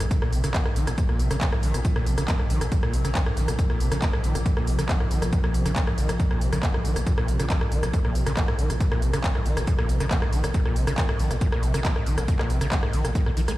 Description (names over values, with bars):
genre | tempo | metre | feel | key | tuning
driving peak-time techno | 138 BPM | 4/4 | straight | unclear | A4 = 439 Hz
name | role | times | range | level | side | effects
overdriven acid bass | riff | 0.0-13.5 s | Ab2 to Bb3 | -29 LUFS | equal | distortion, ensemble chorus, sidechain pumping, dub echo
saturated sub bass | bass | 0.0-13.6 s | Bb1 | -26 LUFS | equal | tube saturation, sidechain pumping, low-pass filter
metallic inharmonic drone | drone | 0.0-13.6 s | Bb2 to F3 | -35 LUFS | left 1 dB | chorus, built-in reverb, sidechain pumping
techno drum kit | drums | 0.0-13.6 s | handclaps, hi-hat, rim click | -30 LUFS | equal | none
electronic kick drum | drums | 0.1-13.2 s | none | -24 LUFS | equal | none
room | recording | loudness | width
light reverb, digital ambience | played on a big sound system in a bare room, stone room reverb | -21 LUFS | side -16 dB against mid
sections
0.0-13.6 A section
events
filter sweep on acid bass 0.0-13.6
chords
0.0 Bb5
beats
| 0.11 0.54 0.98 1.41 | 1.85 2.28 2.72 3.15 | 3.59 4.02 4.46 4.89 | 5.33 5.76 6.20 6.63 | 7.07 7.50 7.93 8.37 | 8.80 9.24 9.67 10.11 | 10.54 10.98 11.41 11.85 | 12.28 12.72 13.15